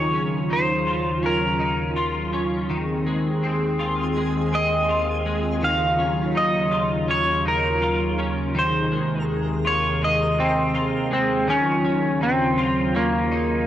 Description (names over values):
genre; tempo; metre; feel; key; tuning
dream pop; 82 BPM; 4/4; straight; Eb dorian; A4 = 441 Hz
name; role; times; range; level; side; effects
clean electric guitar; melody; 0.0-13.7 s; Bb3 to F5; -22 LUFS; equal; analog chorus, tape echo
hollow soft pad; sustained chords; 0.0-13.7 s; Eb2 to Ab4; -25 LUFS; right 1 dB; chorus
twelve-string electric guitar; arpeggios; 0.0-13.7 s; Eb3 to F4; -26 LUFS; left 2 dB; ensemble chorus, tape echo
twinkling granular texture; texture; 3.6-10.7 s; F4 to Bb4; -37 LUFS; equal; built-in reverb, tape echo
room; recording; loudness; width
light reverb; dry, gritty hardware recording; -20 LUFS; side -11 dB against mid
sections
0.0-11.5 A section; 11.5-13.7 A section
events
none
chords
0.0 Ebm9; 2.7 Fm7/Eb; 5.6 Ebm9; 8.6 Fm7/Eb; 11.5 Ebm9